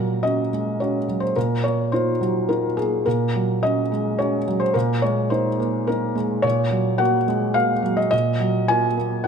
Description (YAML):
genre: neoclassical minimalist piano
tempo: 106 BPM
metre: 3/4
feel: rubato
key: unclear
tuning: A4 = 445 Hz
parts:
  - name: felt-muted upright piano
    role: solo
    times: 0.0-9.3 s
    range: Bb2 to Ab5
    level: -19 LUFS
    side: equal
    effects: none
room: light reverb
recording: none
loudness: -19 LUFS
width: side -6 dB against mid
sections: 0.0-9.3 A section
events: none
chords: 0.0 Gbadd9/Bb; 1.4 Ebmadd9/Bb; 3.1 Gbadd9/Bb; 4.7 Abadd9/Bb; 6.4 Gbadd9/Bb; 8.1 Ebmadd9/Bb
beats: 0.23 0.79 | 1.35 1.92 2.49 | 3.06 3.63 4.19 | 4.75 5.31 5.88 | 6.44 7.00 7.56 | 8.12 8.69 9.25